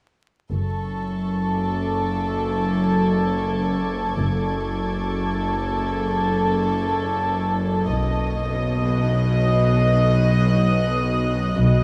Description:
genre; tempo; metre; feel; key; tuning
cinematic, suspense film score; 65 BPM; 4/4; straight; F# dorian; A4 = 440 Hz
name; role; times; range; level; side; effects
warm symphonic violin section; melody; 0.5-11.8 s; A4 to D#5; -27 LUFS; equal; none
rich symphonic cello section; bass; 0.5-11.8 s; F#2 to B2; -26 LUFS; equal; none
warm symphonic double bass section; bass; 0.5-11.8 s; F#1 to B1; -26 LUFS; equal; none
bowed-like drone; drone; 1.0-11.8 s; F#1 to B1; -27 LUFS; equal; built-in reverb
dark chamber violin section; texture; 0.5-11.8 s; C#6 to G#6; -39 LUFS; equal; none
room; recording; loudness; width
wet huge ambient reverb, RT60 8.2 s; in a vast, echoing space, vinyl crackle; -22 LUFS; mono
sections
0.5-11.8 A section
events
none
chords
0.5 F#madd9; 7.9 B

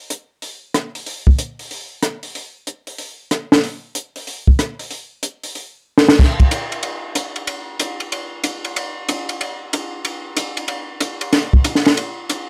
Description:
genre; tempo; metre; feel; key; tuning
jazz; 187 BPM; 4/4; swing 64% on 8ths; none; none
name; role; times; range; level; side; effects
compact cocktail drum kit; drums; 0.1-12.4 s; crash cymbal, hi-hat, kick drum, ride cymbal, rim click, snare drum; -19 LUFS; equal; none
room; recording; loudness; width
light reverb; dark, warm production; -19 LUFS; mono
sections
0.0-6.2 A section; 6.2-12.5 A section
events
drum fill 5.9-6.2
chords
none

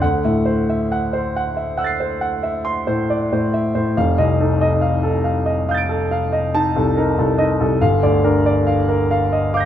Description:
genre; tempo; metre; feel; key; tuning
classical, impressionist solo piano; 46 BPM (dotted quarters); 9/8; rubato; unclear; A4 = 440 Hz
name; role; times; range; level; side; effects
clear concert grand piano; solo; 0.0-9.7 s; F1 to D7; -16 LUFS; equal; none
room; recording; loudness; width
moderate recital hall reverb, RT60 1.5 s; close, detailed microphones; -16 LUFS; side -10 dB against mid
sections
0.0-9.7 A section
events
none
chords
0.0 D9; 4.0 F13; 7.8 Gm7

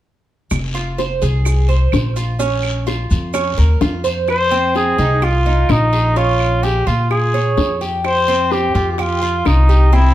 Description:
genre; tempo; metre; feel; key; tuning
latin, Cuban son and guajira; 128 BPM; 4/4; straight; F minor; A4 = 439 Hz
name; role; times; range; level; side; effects
upright bass; bass; 0.5-10.1 s; F1 to Bb2; -16 LUFS; equal; none
bongos; percussion; 0.5-10.1 s; none; -24 LUFS; left 4 dB; none
claves; percussion; 0.5-9.7 s; none; -30 LUFS; right 7 dB; none
guiro; percussion; 0.5-10.1 s; none; -32 LUFS; left 4 dB; none
maracas; percussion; 0.5-4.3 s; none; -35 LUFS; right 4 dB; none
Cuban tres; arpeggios; 0.7-10.1 s; C4 to Db5; -21 LUFS; right 3 dB; none
warm trumpet; melody; 4.3-10.1 s; Eb4 to C5; -17 LUFS; equal; none
room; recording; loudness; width
moderate large studio reverb, RT60 0.9 s; band playing live in one room; -14 LUFS; side -13 dB against mid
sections
0.5-4.3 A section; 4.3-10.1 B section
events
none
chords
0.5 Fm; 2.4 Bbm; 4.3 Fm7; 6.2 Bbm7; 8.0 Fsus2

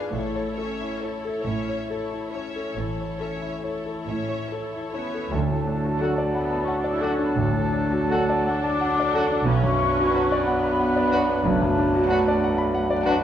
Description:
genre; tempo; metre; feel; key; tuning
classical, romantic movement for piano and orchestra; 44-63 BPM (dotted quarters); 12/8; rubato; D major; A4 = 440 Hz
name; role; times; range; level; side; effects
clear concert grand piano; melody; 0.0-13.2 s; B1 to B5; -25 LUFS; equal; none
warm symphonic violin section; melody; 0.0-13.2 s; C#5 to F#5; -39 LUFS; left 4 dB; none
warm symphonic violin section; second line; 0.0-13.2 s; D4 to C#5; -35 LUFS; left 3 dB; none
rich symphonic viola section; accompaniment; 0.0-13.0 s; A3 to E4; -32 LUFS; right 1 dB; none
rich studio cello section; bass; 0.1-12.2 s; F#2 to D3; -31 LUFS; right 4 dB; none
warm symphonic double bass section; bass; 0.1-12.2 s; F#1 to D2; -31 LUFS; right 3 dB; none
mellow large flute ensemble; second line; 4.9-13.1 s; A5 to E6; -29 LUFS; left 2 dB; none
warm clarinet; second line; 5.3-13.1 s; D4; -31 LUFS; left 2 dB; none
warm cor anglais; second line; 5.3-13.1 s; A4 to B4; -33 LUFS; right 2 dB; none
mellow bassoon; accompaniment; 5.3-13.2 s; F#3; -32 LUFS; equal; none
mellow French horn section; sustained chords; 6.0-13.2 s; F#3 to D4; -32 LUFS; left 2 dB; none
bright trumpet; stabs; 6.0-13.2 s; F#4; -32 LUFS; right 2 dB; none
room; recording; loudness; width
wet scoring stage reverb, RT60 1.7 s; dark, warm production; -21 LUFS; side -10 dB against mid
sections
0.0-5.3 A section; 5.3-13.2 B section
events
none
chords
0.1 A; 5.3 D; 9.5 Bm7

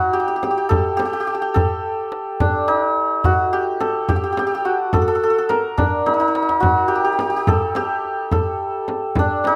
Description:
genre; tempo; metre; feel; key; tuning
Persian modal ensemble; 71 BPM (dotted quarters); 6/8; straight; unclear; A4 = 441 Hz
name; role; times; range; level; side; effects
santur; melody; 0.0-9.6 s; D4 to Bb4; -20 LUFS; equal; none
frame drum; percussion; 0.4-9.6 s; none; -26 LUFS; equal; none
tombak; percussion; 0.4-9.6 s; none; -25 LUFS; equal; none
room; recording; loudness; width
moderate small room reverb, RT60 0.5 s; rough home demo mix; -19 LUFS; mono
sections
0.0-9.6 A section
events
drum fill 6.1-6.6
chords
none

